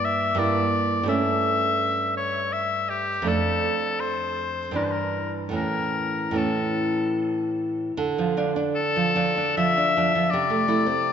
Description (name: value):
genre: romantic duo for oboe and classical guitar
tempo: 70-88 BPM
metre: 3/4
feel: rubato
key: D minor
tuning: A4 = 440 Hz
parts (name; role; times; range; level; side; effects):
- clear oboe; melody; 0.0-11.1 s; G4 to E5; -24 LUFS; left 4 dB; tape echo
- nylon-string guitar; accompaniment; 0.0-11.1 s; F2 to E4; -24 LUFS; right 2 dB; none
room: wet concert hall reverb, RT60 2.2 s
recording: nothing above 7.5 kHz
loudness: -21 LUFS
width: side -8 dB against mid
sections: 0.0-8.0 A section; 8.0-11.1 B section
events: none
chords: 0.0 Em7b5/G; 1.1 A7/G; 3.3 Dm/F; 4.8 Em7b5/G; 5.6 A; 8.0 Dm; 10.3 Am/C